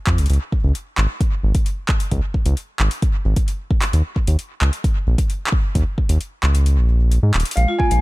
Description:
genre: IDM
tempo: 132 BPM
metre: 4/4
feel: straight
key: unclear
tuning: A4 = 440 Hz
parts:
  - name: round analog bass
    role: bass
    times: 0.1-8.0 s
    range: Eb1 to Ab2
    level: -15 LUFS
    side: equal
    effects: tube saturation
  - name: electro analog drum machine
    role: drums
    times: 0.1-8.0 s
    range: handclaps, hi-hat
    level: -26 LUFS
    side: equal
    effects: tape echo
  - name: electronic kick drum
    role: drums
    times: 0.1-7.9 s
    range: none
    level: -19 LUFS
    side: equal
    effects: none
  - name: felt-muted upright piano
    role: melody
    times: 7.6-8.0 s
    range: F5 to Ab5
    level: -21 LUFS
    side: left 1 dB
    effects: none
  - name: vibraphone with hard mallets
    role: arpeggios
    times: 7.6-8.0 s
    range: Ab3 to F4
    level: -22 LUFS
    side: equal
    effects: none
room: little or no reverb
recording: none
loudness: -16 LUFS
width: side -20 dB against mid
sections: 0.0-8.0 A section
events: kick drops out 6.7-7.6; drum fill 7.3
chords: 0.3 Db5; 3.9 Eb5

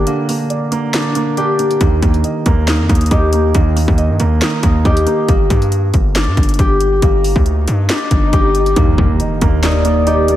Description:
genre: hip hop, trap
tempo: 138 BPM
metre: 4/4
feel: half-time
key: Eb major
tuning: A4 = 439 Hz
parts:
  - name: felt-muted upright piano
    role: accompaniment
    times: 0.0-5.3, 8.8-10.4 s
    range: D3 to Eb5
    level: -18 LUFS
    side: right 4 dB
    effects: none
  - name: concert harp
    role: arpeggios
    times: 0.0-10.4 s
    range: Bb3 to G4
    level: -18 LUFS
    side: left 2 dB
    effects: tape echo
  - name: distorted 808-style bass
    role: bass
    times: 0.0-10.4 s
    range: G1 to G2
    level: -15 LUFS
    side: equal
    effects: distortion
  - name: trap drum kit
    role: drums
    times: 0.1-10.4 s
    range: handclaps, hi-hat, kick drum, snare drum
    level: -16 LUFS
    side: equal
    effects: overdrive
  - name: swell and impact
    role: sound effects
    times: 7.4-10.4 s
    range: none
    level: -25 LUFS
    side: equal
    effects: none
  - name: deep dark ambient pad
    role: sustained chords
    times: 9.4-10.4 s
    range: Eb3 to G4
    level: -22 LUFS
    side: right 1 dB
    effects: chorus, built-in reverb
  - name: mellow synth brass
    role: stabs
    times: 8.8-9.1 s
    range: Bb1 to Eb3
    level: -22 LUFS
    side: left 1 dB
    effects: chorus
  - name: warm velvety synth lead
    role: second line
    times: 9.6-10.4 s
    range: D5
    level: -17 LUFS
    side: left 3 dB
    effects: chorus, tape echo
room: light reverb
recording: none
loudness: -11 LUFS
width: side -13 dB against mid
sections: 0.0-8.8 A section; 8.8-10.4 B section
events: break 0.1-1.8; swell 7.4-8.8; impact 8.8-10.4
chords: 0.0 Gm; 1.8 Eb; 5.3 Gm; 8.8 Eb

